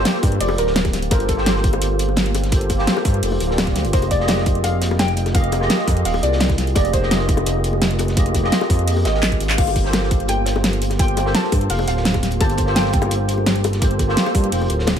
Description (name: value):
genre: liquid drum and bass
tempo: 170 BPM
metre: 4/4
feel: straight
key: G minor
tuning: A4 = 442 Hz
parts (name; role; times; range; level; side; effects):
- soft round pluck; melody; 0.0-1.8, 3.9-13.4 s; A4 to A5; -26 LUFS; equal; lush chorus, tape echo
- barky tine electric piano; accompaniment; 0.0-15.0 s; Bb3 to F5; -23 LUFS; equal; ensemble chorus, tape echo
- smooth synth bass; bass; 0.0-15.0 s; D1 to G2; -21 LUFS; equal; none
- crunchy breakbeat drum kit; drums; 0.1-15.0 s; hi-hat, snare drum; -31 LUFS; left 1 dB; high-pass filter on hats, high-pass filter on snare, high-pass filter on room
- pop drum kit; drums; 0.1-15.0 s; crash cymbal, handclaps, hi-hat, snare drum; -22 LUFS; equal; overdrive
- electronic kick drum; drums; 0.2-15.0 s; none; -20 LUFS; equal; none
- bongos; percussion; 0.2-14.9 s; none; -29 LUFS; left 7 dB; none
room: small room reverb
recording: none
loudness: -16 LUFS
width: side -8 dB against mid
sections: 0.0-15.0 A section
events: drum fill 9.2-9.6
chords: 0.0 Gm11; 3.9 Fm11; 9.6 Gm11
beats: 0.05 0.41 0.76 | 1.11 1.46 1.82 2.17 | 2.52 2.88 3.23 3.58 | 3.94 4.29 4.64 4.99 | 5.35 5.70 6.05 6.41 | 6.76 7.11 7.46 7.82 | 8.17 8.52 8.88 9.23 | 9.58 9.94 10.29 10.64 | 10.99 11.35 11.70 12.05 | 12.40 12.76 13.11 13.46 | 13.82 14.17 14.52 14.88